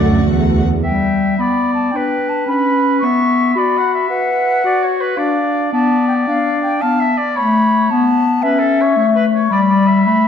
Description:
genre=cinematic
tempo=111 BPM (dotted quarters)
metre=12/8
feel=straight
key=G lydian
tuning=A4 = 440 Hz
part: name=warm symphonic violin section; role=melody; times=0.0-0.6 s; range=F#5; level=-28 LUFS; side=left 9 dB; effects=none
part: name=clear oboe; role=second line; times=0.0-10.3 s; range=A4 to F#5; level=-21 LUFS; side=right 1 dB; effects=none
part: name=rich symphonic violin section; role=second line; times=0.0-0.6 s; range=F#4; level=-32 LUFS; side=left 2 dB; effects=none
part: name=rich symphonic viola section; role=accompaniment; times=0.0-0.6 s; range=A3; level=-21 LUFS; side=right 3 dB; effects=none
part: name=mellow French horn section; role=sustained chords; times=0.0-0.6 s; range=A3 to F#4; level=-23 LUFS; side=left 5 dB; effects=none
part: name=rich studio double bass section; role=bass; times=0.0-0.6 s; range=D2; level=-19 LUFS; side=right 4 dB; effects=none
part: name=warm symphonic cello section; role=bass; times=0.0-0.8 s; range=E2 to F#2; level=-18 LUFS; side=right 2 dB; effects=none
part: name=bright clarinet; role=second line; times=0.8-10.3 s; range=G3 to B4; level=-16 LUFS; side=left 3 dB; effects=none
part: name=concert flute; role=second line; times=0.8-10.3 s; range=E5 to C#6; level=-17 LUFS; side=left 1 dB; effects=none
room=wet scoring stage reverb, RT60 1.4 s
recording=dark, warm production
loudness=-13 LUFS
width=side -8 dB against mid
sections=0.8-10.3 A section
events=none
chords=0.0 D; 0.8 G; 3.0 B5; 5.2 Dm; 7.4 A; 9.5 G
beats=0.28 | 0.84 1.39 1.93 2.48 | 3.02 3.57 4.11 4.65 | 5.19 5.73 6.28 6.82 | 7.36 7.90 8.43 8.97 | 9.51 10.05

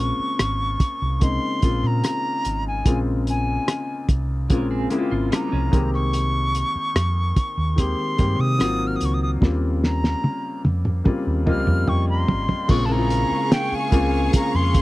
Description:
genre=lush 1970s-style soul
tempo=73 BPM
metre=4/4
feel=straight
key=Bb dorian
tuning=A4 = 440 Hz
part: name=breathy bright concert flute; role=melody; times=0.0-14.8 s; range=G5 to F6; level=-26 LUFS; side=left 1 dB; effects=none
part: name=clear grand piano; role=accompaniment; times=0.0-14.8 s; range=Db3 to C6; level=-25 LUFS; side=left 2 dB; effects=none
part: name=hollow-body short-scale fingered electric bass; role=bass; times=0.0-14.8 s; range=Ab1 to C3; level=-23 LUFS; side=equal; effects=none
part: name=cloth-damped thuddy drum kit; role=drums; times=0.4-14.8 s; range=crash cymbal, hi-hat, kick drum, rim click, snare drum, toms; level=-20 LUFS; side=equal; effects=none
part: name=clean electric guitar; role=riff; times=4.5-5.9 s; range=F3 to Bb4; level=-31 LUFS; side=right 7 dB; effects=tremolo
part: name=warm studio string section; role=second line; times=12.7-14.8 s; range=Ab4 to Db6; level=-29 LUFS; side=right 2 dB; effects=none
part: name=tonewheel organ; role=sustained chords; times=12.7-14.8 s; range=Db3 to Bb3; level=-31 LUFS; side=right 4 dB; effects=none
room=small room ambience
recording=dry, close 1970s-style studio recording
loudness=-19 LUFS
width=side -18 dB against mid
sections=0.0-12.7 A section; 12.7-14.8 B section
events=drum fill 9.4-12.7; grand piano fill 11.1-12.7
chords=0.0 Bbm9; 5.7 Abmaj9/C; 8.6 Ab13; 9.4 Eb13; 12.7 Bbm9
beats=0.39 1.21 2.04 | 2.86 3.68 4.50 5.32 | 6.14 6.96 7.78 8.60 | 9.42 10.24 11.06 11.88 | 12.70 13.52 14.33

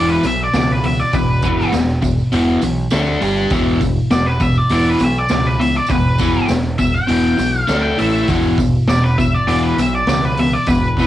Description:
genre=garage rock duo or trio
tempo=100 BPM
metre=4/4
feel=straight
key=unclear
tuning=A4 = 440 Hz
part: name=octave-fuzz lead guitar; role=melody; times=0.0-11.1 s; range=B4 to G5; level=-20 LUFS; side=equal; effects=distortion, cassette tape, tape echo
part: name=overdriven electric guitar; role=riff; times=0.0-11.1 s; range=E2 to G4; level=-16 LUFS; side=left 1 dB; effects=cassette tape
part: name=growling picked electric bass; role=bass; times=0.0-11.1 s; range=E1 to D2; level=-21 LUFS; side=equal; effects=overdrive
part: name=raw garage drum kit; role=drums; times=0.2-11.1 s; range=hi-hat, kick drum, snare drum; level=-22 LUFS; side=equal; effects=none
part: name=tambourine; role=percussion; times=0.2-11.1 s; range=none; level=-36 LUFS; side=right 9 dB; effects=none
room=light reverb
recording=home recording on cassette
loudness=-13 LUFS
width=side -13 dB against mid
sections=0.0-11.1 A section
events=none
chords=0.0 E5; 2.9 D5; 3.2 G5; 3.5 E5; 7.7 D5; 8.0 A5; 8.3 E5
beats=0.53 | 1.13 1.72 2.32 2.92 | 3.52 4.11 4.71 5.30 | 5.90 6.50 7.09 7.69 | 8.29 8.88 9.48 10.08 | 10.67

